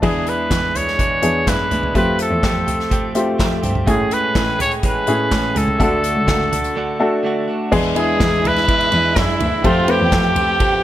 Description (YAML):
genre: piano-driven pop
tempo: 125 BPM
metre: 4/4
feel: straight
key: unclear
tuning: A4 = 441 Hz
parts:
  - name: breathy trumpet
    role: melody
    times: 0.0-10.8 s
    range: E4 to C#5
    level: -19 LUFS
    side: equal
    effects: none
  - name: warm upright piano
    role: accompaniment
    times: 0.0-10.8 s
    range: A2 to B4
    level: -21 LUFS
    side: left 2 dB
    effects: none
  - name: direct-recorded clean electric guitar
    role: riff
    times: 0.0-10.8 s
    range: E2 to G#4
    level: -25 LUFS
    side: right 5 dB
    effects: spring reverb
  - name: dark cello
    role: bass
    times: 0.0-10.8 s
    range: C#2 to A2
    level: -23 LUFS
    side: equal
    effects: none
  - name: unplugged drum kit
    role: drums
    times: 0.0-10.7 s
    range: crash cymbal, handclaps, hi-hat, kick drum, ride cymbal, snare drum, toms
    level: -21 LUFS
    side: equal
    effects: none
  - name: dark studio violin section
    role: second line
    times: 7.7-10.8 s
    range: E4 to G5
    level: -24 LUFS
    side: right 2 dB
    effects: none
room: light reverb, studio reverb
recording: none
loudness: -15 LUFS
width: side -13 dB against mid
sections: 0.0-7.7 A section; 7.7-10.8 B section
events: none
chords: 0.0 E7; 2.0 Fadd9; 3.9 Amaj7; 5.8 D; 7.7 E7; 9.6 Fadd9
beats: | 0.03 0.51 0.99 1.47 | 1.95 2.43 2.91 3.39 | 3.88 4.36 4.84 5.32 | 5.80 6.28 6.76 7.24 | 7.72 8.20 8.68 9.16 | 9.64 10.12 10.61